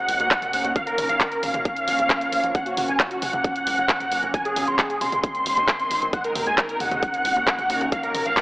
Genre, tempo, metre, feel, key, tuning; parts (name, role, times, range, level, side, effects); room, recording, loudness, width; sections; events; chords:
uplifting trance; 134 BPM; 4/4; straight; Eb dorian; A4 = 438 Hz
supersaw chords; melody; 0.0-8.4 s; Gb4 to C6; -22 LUFS; equal; phaser, sidechain pumping, low-pass filter, digital delay
shimmering ambient pad; sustained chords; 0.0-8.4 s; Eb3 to Gb4; -30 LUFS; equal; chorus, built-in reverb, sidechain pumping
tight sequencer bass; bass; 0.1-8.3 s; Gb1 to Eb2; -36 LUFS; equal; sidechain pumping
big-room dance drum kit; drums; 0.1-8.4 s; handclaps, hi-hat, toms; -24 LUFS; equal
electronic kick drum; drums; 0.3-8.4 s; -26 LUFS; equal
light reverb, digital ambience; AM radio sound; -20 LUFS; side -21 dB against mid
0.0-8.4 A section
0.0 Ebm7; 0.8 Bbm; 2.5 Gb; 4.3 Ab; 6.1 Ebm7